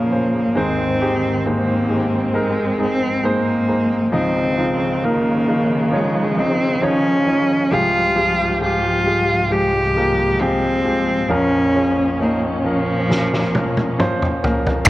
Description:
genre	pop ballad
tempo	67 BPM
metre	4/4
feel	straight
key	unclear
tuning	A4 = 440 Hz
part	rich cello	melody	0.0-14.6 s	F3 to G4	-19 LUFS	equal	none
part	clear grand piano	accompaniment	0.0-14.9 s	Ab1 to Eb5	-21 LUFS	equal	none
part	warm studio string section	sustained chords	0.0-14.9 s	C2 to G4	-24 LUFS	equal	none
part	loose indie drum kit	drums	13.1-14.9 s	snare drum, toms	-20 LUFS	equal	none
room	light reverb, small room ambience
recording	worn, warbling old tape, cassette tape, warbly pitch drift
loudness	-16 LUFS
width	side -16 dB against mid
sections	0.0-14.9 A section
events	drum fill 13.1-14.9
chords	0.0 Bbm; 0.6 Ab; 4.1 Dbadd9; 7.7 Fmadd9/C; 11.3 Bbm

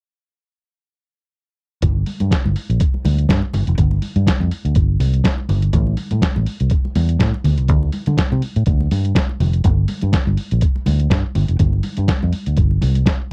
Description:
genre	disco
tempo	123 BPM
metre	4/4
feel	swing 56% on 16ths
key	G dorian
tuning	A4 = 440 Hz
part	fingered electric bass	bass	1.8-13.0 s	F1 to D3	-19 LUFS	equal	none
part	lo-fi sampler-style drum kit	drums	1.8-13.2 s	hi-hat, kick drum, snare drum	-21 LUFS	equal	none
part	congas	percussion	1.8-13.2 s	none	-28 LUFS	equal	none
room	little or no reverb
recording	dry, close 1970s-style studio recording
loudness	-18 LUFS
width	mono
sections	1.8-13.3 A section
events	none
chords	none

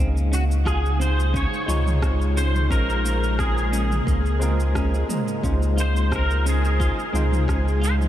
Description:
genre	sunset chillout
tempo	88 BPM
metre	4/4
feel	straight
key	Db major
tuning	A4 = 440 Hz
part	overdriven tine electric piano	accompaniment	0.0-8.1 s	Ab3 to F5	-30 LUFS	left 1 dB	medium tremolo, auto-pan, tape echo, shimmer reverb
part	ethereal airy pad	sustained chords	0.0-8.1 s	Db3 to F5	-30 LUFS	equal	ensemble chorus, built-in reverb, shimmer reverb
part	clean electric guitar	arpeggios	0.0-8.0 s	Bb3 to F4	-33 LUFS	right 1 dB	tape echo, shimmer reverb
part	warm sub bass	bass	0.0-8.1 s	Bb1 to Db2	-21 LUFS	equal	none
part	deep house drum kit	drums	0.2-8.1 s	cabasa, rim click, toms	-33 LUFS	right 1 dB	overdrive
part	pedal steel guitar	melody	0.3-7.9 s	Gb4 to Db5	-28 LUFS	equal	ensemble chorus, tape echo, shimmer reverb
part	electronic kick drum	drums	0.7-7.6 s	none	-26 LUFS	equal	overdrive
room	moderate huge ambient reverb, RT60 8.1 s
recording	dreamy mix soaked in reverb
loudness	-19 LUFS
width	side -12 dB against mid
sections	0.0-8.1 A section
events	none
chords	0.0 Dbmaj7; 2.7 Bbm9; 5.4 Dbmaj7

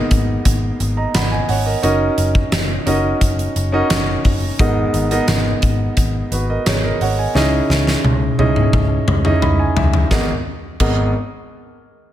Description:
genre	1980s-style pop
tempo	87 BPM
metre	4/4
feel	straight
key	G# minor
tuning	A4 = 440 Hz
part	warm concert grand piano	accompaniment	0.0-11.1 s	G#1 to B5	-19 LUFS	right 1 dB	none
part	vintage muted picked electric bass	bass	0.1-11.1 s	F#1 to C#2	-20 LUFS	equal	none
part	huge arena drum kit	drums	0.1-11.0 s	crash cymbal, hi-hat, kick drum, snare drum, tambourine, toms	-18 LUFS	equal	gated reverb
room	studio reverb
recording	none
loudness	-14 LUFS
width	side -12 dB against mid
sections	0.0-10.1 A section; 10.1-12.1 B section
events	drum fill 7.4-10.1; grand piano fill 9.1-10.1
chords	0.0 G#madd9; 1.8 D#m7/F#; 4.6 G#madd9; 7.4 C#madd9; 10.1 G#madd9

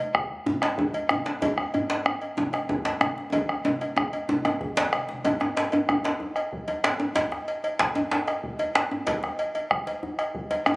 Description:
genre	west african traditional, West African drum ensemble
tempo	126 BPM (dotted quarters)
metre	12/8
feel	straight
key	none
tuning	none
part	bombo	percussion	0.1-10.8 s	none	-28 LUFS	equal	none
part	djembe	percussion	0.1-10.7 s	none	-39 LUFS	left 1 dB	none
part	congas	percussion	0.5-5.2 s	none	-39 LUFS	equal	none
part	djembe	percussion	0.5-10.8 s	none	-26 LUFS	equal	none
part	cowbell	percussion	0.6-10.8 s	none	-30 LUFS	equal	none
room	moderate recital hall reverb, RT60 1.7 s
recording	recorded on a phone in the room, club reverb, compression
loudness	-24 LUFS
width	side -25 dB against mid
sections	0.0-5.2 A section; 5.2-10.8 A section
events	drum fill 3.3-5.2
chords	none

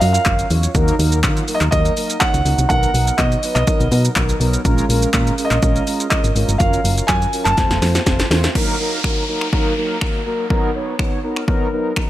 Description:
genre	dance-pop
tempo	123 BPM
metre	4/4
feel	straight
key	unclear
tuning	A4 = 438 Hz
part	warm concert grand piano	melody	0.0-8.3 s	Eb5 to A5	-21 LUFS	right 2 dB	tape echo
part	mellow synth brass	accompaniment	0.0-12.1 s	Gb3 to Db5	-22 LUFS	right 1 dB	chorus, sidechain pumping
part	solid FM bass	bass	0.0-8.5 s	F1 to Eb3	-18 LUFS	equal	sidechain pumping
part	punchy analog drum machine	drums	0.0-12.1 s	crash cymbal, finger snaps, handclaps, hi-hat, kick drum, shaker, snare drum	-19 LUFS	equal	overdrive
part	downlifter	sound effects	8.6-12.1 s	none	-27 LUFS	equal	none
room	little or no reverb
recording	none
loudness	-15 LUFS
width	side -14 dB against mid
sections	0.0-8.6 A section; 8.6-12.1 B section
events	drum fill 7.6-8.6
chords	0.0 Gbmaj7; 0.7 Ebm; 2.7 Bmaj7; 4.7 Bbm7; 6.6 Gbmaj7; 7.6 F; 8.6 Ebm; 10.5 Bmaj7

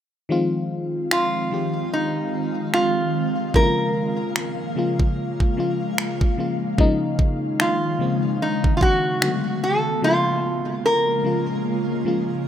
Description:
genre	contemporary R&B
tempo	74 BPM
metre	4/4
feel	swing 58% on 16ths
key	Ab major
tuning	A4 = 439 Hz
part	FM electric piano	accompaniment	0.3-12.5 s	Db3 to G4	-25 LUFS	left 2 dB	chorus
part	ethereal airy pad	sustained chords	0.8-12.5 s	Db3 to F5	-26 LUFS	equal	ensemble chorus, built-in reverb
part	lap resonator guitar	melody	1.1-12.5 s	Eb4 to Bb4	-22 LUFS	right 1 dB	digital delay
part	trap drum kit	drums	1.1-9.4 s	finger snaps, kick drum	-20 LUFS	right 1 dB	none
room	light reverb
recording	rough home demo mix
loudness	-19 LUFS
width	side -10 dB against mid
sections	0.3-12.5 A section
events	none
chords	0.3 Ab6; 3.5 Db6; 6.8 Eb9sus4; 9.2 D6; 10.0 Db6

